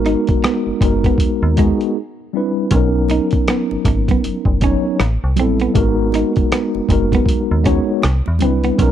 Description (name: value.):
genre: R&B, neo-soul.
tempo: 79 BPM.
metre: 4/4.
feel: swing 60% on 16ths.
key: unclear.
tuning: A4 = 440 Hz.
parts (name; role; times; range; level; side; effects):
mellow tine electric piano; accompaniment; 0.0-8.9 s; F#3 to C#5; -18 LUFS; left 1 dB; medium stereo tremolo.
metallic FM bass; bass; 0.0-8.9 s; F#1 to E2; -18 LUFS; equal; none.
electric guitar at the edge of break-up; second line; 0.1-8.8 s; G#3 to D#4; -22 LUFS; right 5 dB; none.
boom bap sampler-style drum kit; drums; 0.1-8.9 s; hi-hat, kick drum, rim click; -18 LUFS; equal; none.
congas; percussion; 2.7-8.6 s; none; -28 LUFS; right 14 dB; none.
room: little or no reverb.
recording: dry, close 1970s-style studio recording.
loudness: -14 LUFS.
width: side -10 dB against mid.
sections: 0.0-8.9 A section.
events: break 2.0-2.7.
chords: 0.0 G#m9; 2.0 Cmaj9; 2.7 Bmaj9; 5.0 Am9; 5.7 G#m9; 8.0 Cmaj9.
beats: 0.43 1.19 1.95 | 2.71 3.47 4.23 4.99 | 5.75 6.51 7.27 8.03 | 8.79.